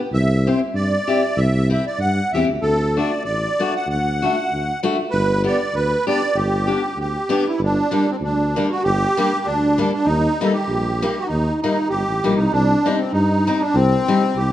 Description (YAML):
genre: alpine folk, alpine dance band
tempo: 97 BPM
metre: 2/4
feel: swing 54% on 8ths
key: G major, G minor from 7.6 s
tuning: A4 = 441 Hz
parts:
  - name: musette accordion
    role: melody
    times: 0.1-14.5 s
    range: C4 to F#5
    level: -20 LUFS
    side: right 1 dB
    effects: none
  - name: mellow tuba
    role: bass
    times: 0.1-14.5 s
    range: G1 to G2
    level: -21 LUFS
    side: equal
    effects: none
  - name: picked steel-string acoustic guitar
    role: accompaniment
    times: 0.5-14.2 s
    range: G3 to G4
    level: -22 LUFS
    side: left 3 dB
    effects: none
room: wet recital hall reverb, RT60 1.5 s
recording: nothing above 11.0 kHz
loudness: -17 LUFS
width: side -12 dB against mid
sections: 0.0-7.6 A section; 7.6-14.5 B section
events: none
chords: 0.1 Cadd9; 2.6 D; 5.1 G; 7.6 Gm; 10.1 Eb; 12.5 Cm